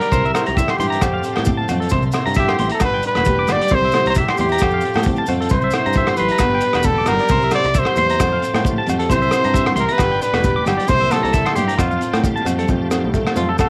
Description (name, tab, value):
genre	highlife guitar band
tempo	134 BPM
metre	4/4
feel	swing 54% on 16ths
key	F major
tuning	A4 = 440 Hz
part	clear trumpet	melody	0.0-12.2 s	F4 to D5	-21 LUFS	equal	cassette tape
part	picked acoustic archtop guitar	accompaniment	0.0-13.7 s	F2 to G4	-27 LUFS	equal	cassette tape
part	bright tonewheel organ	sustained chords	0.0-13.7 s	D5 to C6	-38 LUFS	equal	none
part	twangy electric guitar	arpeggios	0.0-13.7 s	F4 to D6	-26 LUFS	equal	cassette tape, tape echo
part	crunchy breakbeat drum kit	drums	0.0-13.7 s	hi-hat, kick drum, rim click	-24 LUFS	equal	cassette tape
part	picked electric bass	bass	0.1-13.6 s	E1 to A2	-26 LUFS	equal	none
part	congas	percussion	0.1-13.5 s	none	-31 LUFS	equal	none
part	maracas	percussion	0.1-13.7 s	none	-37 LUFS	equal	none
part	agogo bells	percussion	0.3-13.7 s	none	-31 LUFS	equal	none
room	light reverb, small room ambience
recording	home recording on cassette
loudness	-17 LUFS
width	mono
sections	0.0-12.7 A section; 12.7-13.7 B section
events	drum fill 12.3-12.7; clean electric guitar solo 12.7-13.7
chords	0.1 C7; 1.0 Fadd9; 1.9 C7; 2.8 G; 3.7 C7; 4.6 Fadd9; 5.5 C7; 6.4 G; 7.3 C7; 8.2 Fadd9; 9.1 C7; 10.0 G; 10.9 C7; 11.8 Fadd9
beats	| 0.12 0.57 1.02 1.47 | 1.92 2.37 2.81 3.26 | 3.71 4.16 4.61 5.06 | 5.51 5.96 6.41 6.86 | 7.30 7.75 8.20 8.65 | 9.10 9.55 9.99 10.44 | 10.89 11.34 11.79 12.24 | 12.69 13.14 13.59